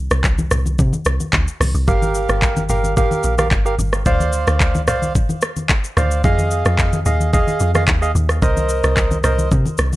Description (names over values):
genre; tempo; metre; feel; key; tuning
amapiano; 110 BPM; 4/4; straight; G minor; A4 = 440 Hz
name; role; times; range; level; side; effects
deep log drum bass; bass; 0.0-9.9 s; G1 to C3; -18 LUFS; equal; none
smooth R&B drum kit; drums; 0.1-10.0 s; handclaps, hi-hat, kick drum, rim click, shaker; -18 LUFS; equal; none
congas; percussion; 0.4-10.0 s; none; -24 LUFS; left 1 dB; none
percussive organ stab; stabs; 1.9-9.5 s; G4 to F5; -20 LUFS; right 2 dB; chorus, analog delay
room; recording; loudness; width
digital ambience; dry, gritty hardware recording, transformer saturation; -15 LUFS; side -17 dB against mid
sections
0.0-10.0 A section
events
none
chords
0.0 N.C.; 1.9 Gm7; 4.1 Dm7; 6.2 Fm7; 8.4 Cm7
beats
0.24 0.79 1.33 | 1.88 2.42 2.97 3.52 | 4.06 4.61 5.15 5.70 | 6.24 6.79 7.33 7.88 | 8.42 8.97 9.52